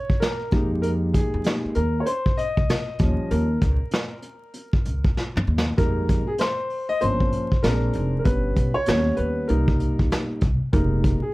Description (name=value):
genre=hip hop, jazz-hop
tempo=97 BPM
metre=4/4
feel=swing 61% on 16ths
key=F minor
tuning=A4 = 440 Hz
part: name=dark concert grand piano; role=accompaniment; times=0.0-11.3 s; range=F3 to Eb5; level=-25 LUFS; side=equal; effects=none
part: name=vintage brush drum kit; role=drums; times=0.1-11.2 s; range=hi-hat, kick drum, snare drum, toms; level=-23 LUFS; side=equal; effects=none
part: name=upright bass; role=bass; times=0.5-11.1 s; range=F1 to F2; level=-24 LUFS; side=equal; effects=none
room=light reverb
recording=dark, warm production, vinyl crackle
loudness=-20 LUFS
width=side -20 dB against mid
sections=0.0-5.8 A section; 5.8-11.3 B section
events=grand piano solo 0.0-5.8, 5.8-11.3; drum fill 5.2-5.8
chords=0.0 N.C.; 0.5 Fm11; 3.0 Eb7; 5.8 Fm11; 7.0 Gm7b5; 7.6 Bb7; 8.3 G; 8.9 Ebaug7; 9.5 Cm7; 10.7 Fm11